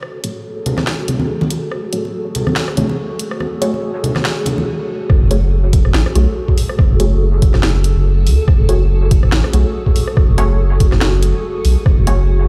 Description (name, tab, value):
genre	deep dubstep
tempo	142 BPM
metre	4/4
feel	swing 56% on 16ths, half-time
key	F# minor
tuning	A4 = 439 Hz
part	granular cloud pad	sustained chords	0.1-12.5 s	F#4 to C#5	-26 LUFS	equal	built-in reverb
part	garage drum kit	drums	0.0-12.2 s	hi-hat, rim click, snare drum	-25 LUFS	equal	high-pass filter on snare, small room ambience, high-pass filter on hats
part	filtered dub chord stab	stabs	0.2-12.2 s	A3 to C#5	-27 LUFS	equal	phaser, lush chorus, dub echo
part	congas	percussion	0.7-4.7 s	none	-23 LUFS	equal	dub echo
part	saturated sub bass	bass	5.1-12.5 s	F#1 to C#2	-16 LUFS	equal	tube saturation
part	electronic kick drum	drums	5.1-12.0 s	none	-14 LUFS	equal	overdrive, small room ambience
room	little or no reverb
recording	played on a big sound system in a bare room, stone room reverb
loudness	-15 LUFS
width	mono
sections	0.0-5.1 A section; 5.1-12.5 B section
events	build-up 0.0-5.1; filter sweep on synth stab 0.0-5.1; filter sweep on ambient pad 0.0-5.1; break 4.7-5.1; drop 5.1-12.5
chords	0.0 F#madd9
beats	| 0.03 0.45 0.87 1.29 | 1.72 2.14 2.56 2.98 | 3.41 3.83 4.25 4.67 | 5.10 5.52 5.94 6.37 | 6.79 7.21 7.63 8.05 | 8.48 8.90 9.32 9.75 | 10.17 10.59 11.01 11.44 | 11.86 12.28